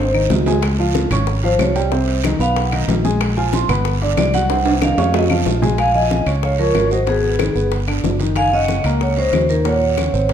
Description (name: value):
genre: Afro-Cuban jazz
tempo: 186 BPM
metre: 4/4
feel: straight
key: Bb minor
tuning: A4 = 441 Hz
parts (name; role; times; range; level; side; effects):
- vibraphone with medium hard mallets; melody; 0.0-10.3 s; Ab4 to C6; -20 LUFS; equal; none
- dark upright piano; accompaniment; 0.0-10.3 s; Bb2 to Db6; -22 LUFS; equal; none
- fingered electric bass; bass; 0.0-10.3 s; Gb1 to F2; -20 LUFS; equal; none
- claves; percussion; 0.1-10.1 s; none; -32 LUFS; left 7 dB; none
- congas; percussion; 0.1-10.3 s; none; -26 LUFS; left 2 dB; none
- bongos; percussion; 0.3-10.3 s; none; -28 LUFS; left 9 dB; none
- guiro; percussion; 0.3-10.3 s; none; -33 LUFS; right 8 dB; none
- timbales; percussion; 0.3-10.3 s; none; -24 LUFS; right 4 dB; none
- mellow jazz flute; second line; 5.8-10.3 s; Cb5 to Ab5; -26 LUFS; left 5 dB; none
room: moderate large studio reverb, RT60 1.4 s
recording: dark, warm production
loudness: -14 LUFS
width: side -9 dB against mid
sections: 0.0-5.8 A section; 5.8-10.3 B section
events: drum fill 0.0-0.6, 4.5-5.8; vibraphone solo 0.0-5.8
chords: 0.0 Ab; 0.6 Dbmaj7; 1.9 Cm; 2.6 B; 3.2 Bb5; 3.9 G; 4.5 Cdim; 5.1 Bbm7; 7.1 Abm; 7.7 G; 8.4 Gb6; 9.7 Ebm7